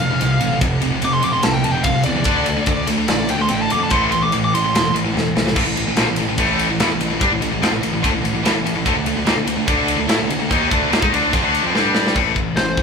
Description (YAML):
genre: heavy metal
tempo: 146 BPM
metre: 4/4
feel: straight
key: A minor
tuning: A4 = 440 Hz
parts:
  - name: high-gain lead guitar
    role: melody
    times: 0.0-4.9, 12.6-12.8 s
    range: C5 to D6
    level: -21 LUFS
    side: equal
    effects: distortion
  - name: high-gain distorted guitar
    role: riff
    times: 0.0-12.8 s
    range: F2 to G4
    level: -20 LUFS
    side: left 7 dB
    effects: distortion
  - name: high-gain distorted guitar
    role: riff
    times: 0.0-12.2 s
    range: F2 to G4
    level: -22 LUFS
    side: right 8 dB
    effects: distortion
  - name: fuzz picked electric bass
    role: bass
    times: 0.0-12.8 s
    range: E1 to A2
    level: -25 LUFS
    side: equal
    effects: overdrive
  - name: tight metal drum kit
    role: drums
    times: 0.0-12.8 s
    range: crash cymbal, kick drum, ride cymbal, snare drum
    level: -21 LUFS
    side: equal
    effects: none
room: moderate large studio reverb, RT60 0.9 s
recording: band playing live in one room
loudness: -15 LUFS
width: side -5 dB against mid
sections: 0.0-5.6 A section; 5.6-12.2 B section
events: half time 0.0-5.6; lead electric guitar solo 0.0-5.6; drum fill 5.2-5.6, 11.7-12.2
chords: 0.0 F5; 2.3 D5; 3.9 Am; 5.6 A5; 8.9 D5; 11.7 G5; 12.2 Am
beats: 0.20 | 0.62 1.03 1.44 1.85 | 2.27 2.68 3.09 3.50 | 3.92 4.33 4.74 5.15 | 5.57 5.98 6.39 6.80 | 7.21 7.63 8.04 8.45 | 8.86 9.27 9.69 10.10 | 10.51 10.92 11.33 11.75 | 12.16 12.57